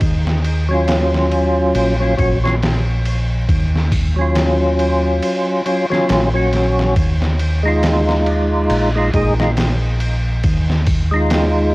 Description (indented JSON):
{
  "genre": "trip hop",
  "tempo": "69 BPM",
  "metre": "4/4",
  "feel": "swing 58% on 16ths",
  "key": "Eb minor",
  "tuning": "A4 = 437 Hz",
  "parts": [
    { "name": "deep dub fingered electric bass", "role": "bass", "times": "0.0-11.7 s", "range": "Bb1 to Eb2", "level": "-17 LUFS", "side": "equal", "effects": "none" },
    { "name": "trip hop sampler-style drum kit", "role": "drums", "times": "0.0-11.6 s", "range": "hi-hat, kick drum, ride cymbal, snare drum", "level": "-20 LUFS", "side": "equal", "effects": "overdrive" },
    { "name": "percussive tonewheel organ", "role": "accompaniment", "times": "0.7-11.7 s", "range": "Gb3 to Ab4", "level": "-17 LUFS", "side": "equal", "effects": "chorus vibrato, slow rotary speaker, harmonic tremolo, tape echo" }
  ],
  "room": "little or no reverb",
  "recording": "worn, warbling old tape, cassette tape, vinyl crackle, warbly pitch drift, faint mains hum",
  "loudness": "-14 LUFS",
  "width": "side -21 dB against mid",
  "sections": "0.0-11.7 A section",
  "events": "none",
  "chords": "0.0 Ebm9; 7.0 Fm7"
}